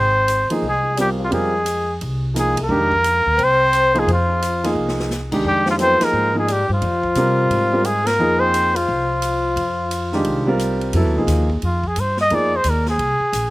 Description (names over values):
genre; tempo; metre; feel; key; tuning
modal jazz; 175 BPM; 4/4; swing 64% on 8ths; F dorian; A4 = 439 Hz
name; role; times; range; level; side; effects
mellow trumpet; melody; 0.0-13.5 s; F4 to Eb5; -18 LUFS; equal; none
trombone with cup mute; second line; 0.0-10.6 s; F3 to C4; -25 LUFS; left 4 dB; slapback echo
upright bass; bass; 0.0-13.5 s; Ab1 to C3; -23 LUFS; equal; none
swinging big-band drum kit; drums; 0.3-13.4 s; crash cymbal, hi-hat, kick drum, ride cymbal, snare drum; -32 LUFS; right 1 dB; none
warm grand piano; accompaniment; 0.5-12.5 s; Eb3 to Bb4; -21 LUFS; right 1 dB; slapback echo
room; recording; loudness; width
little or no reverb; recorded outdoors, with no room sound; -16 LUFS; side -19 dB against mid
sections
0.0-10.9 A section; 10.9-13.5 B section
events
band accent 2.5, 6.0, 8.0; drum fill 4.8-5.1; trumpet solo 10.9-13.5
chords
0.0 Fm7